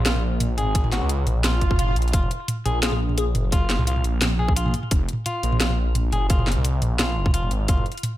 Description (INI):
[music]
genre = half-time drum and bass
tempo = 173 BPM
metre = 4/4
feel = half-time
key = unclear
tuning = A4 = 439 Hz
[part]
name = semi-hollow electric guitar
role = arpeggios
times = 0.0-7.9 s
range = F4 to Ab4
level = -30 LUFS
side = left 2 dB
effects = low-pass filter, digital delay
[part]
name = phased detuned saw bass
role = bass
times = 0.0-7.8 s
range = F1 to Db2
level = -22 LUFS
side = equal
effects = phaser
[part]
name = drum and bass drum kit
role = drums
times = 0.1-8.1 s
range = hi-hat, snare drum, toms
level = -25 LUFS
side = equal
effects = overdrive
[part]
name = electronic kick drum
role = drums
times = 0.7-7.8 s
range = none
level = -20 LUFS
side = equal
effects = overdrive
[part]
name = swell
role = sound effects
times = 1.6-2.1 s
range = none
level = -32 LUFS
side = right 4 dB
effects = none
[part]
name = glassy wavetable pluck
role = melody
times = 2.8-3.5 s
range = Ab4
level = -31 LUFS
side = left 6 dB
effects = chorus, cassette tape, digital delay
[sound]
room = little or no reverb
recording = none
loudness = -20 LUFS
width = side -15 dB against mid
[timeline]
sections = 0.0-8.2 A section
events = swell 1.6-2.1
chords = 0.0 Gb; 2.1 N.C.